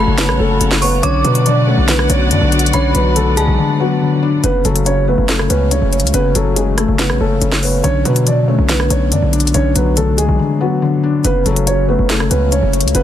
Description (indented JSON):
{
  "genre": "hip hop, trap",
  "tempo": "141 BPM",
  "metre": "4/4",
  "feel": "half-time",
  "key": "F# minor",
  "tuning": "A4 = 439 Hz",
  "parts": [
    { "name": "dark concert grand piano", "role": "melody", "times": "0.0-13.0 s", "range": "F#3 to D5", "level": "-18 LUFS", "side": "right 2 dB", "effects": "none" },
    { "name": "dark detuned synth bell", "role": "second line", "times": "0.0-3.6 s", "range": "A5 to D6", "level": "-22 LUFS", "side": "right 1 dB", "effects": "chorus, ping-pong delay" },
    { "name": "felt-muted upright piano", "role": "accompaniment", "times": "0.0-13.0 s", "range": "C#3 to C#5", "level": "-18 LUFS", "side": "left 5 dB", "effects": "none" },
    { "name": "warm studio string section", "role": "sustained chords", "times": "0.0-4.4 s", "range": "F#4 to F#5", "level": "-23 LUFS", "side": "equal", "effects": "none" },
    { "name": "hard-hitting 808-style bass", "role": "bass", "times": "0.0-13.0 s", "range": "F#1 to B2", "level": "-16 LUFS", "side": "equal", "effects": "none" },
    { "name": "trap drum kit", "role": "drums", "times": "0.2-13.0 s", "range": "hi-hat, rim click, snare drum", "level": "-19 LUFS", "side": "left 1 dB", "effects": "none" }
  ],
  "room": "small room reverb",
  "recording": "dense, heavily limited modern master, lossy compression artefacts",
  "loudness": "-12 LUFS",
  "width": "side -11 dB against mid",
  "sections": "0.0-4.4 A section; 4.4-13.0 B section",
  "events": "drums muted 3.6-4.4; break 10.4-11.2",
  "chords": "0.0 F#m; 1.0 Bm7; 4.4 F#m; 7.8 Bm7; 11.2 F#m",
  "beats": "0.18 0.61 | 1.03 1.46 1.88 2.31 | 2.73 3.16 3.58 4.01 | 4.44 4.86 5.29 5.71 | 6.14 6.56 6.99 7.42 | 7.84 8.27 8.69 9.12 | 9.54 9.97 10.39 10.82 | 11.24 11.67 12.10 12.52 | 12.95"
}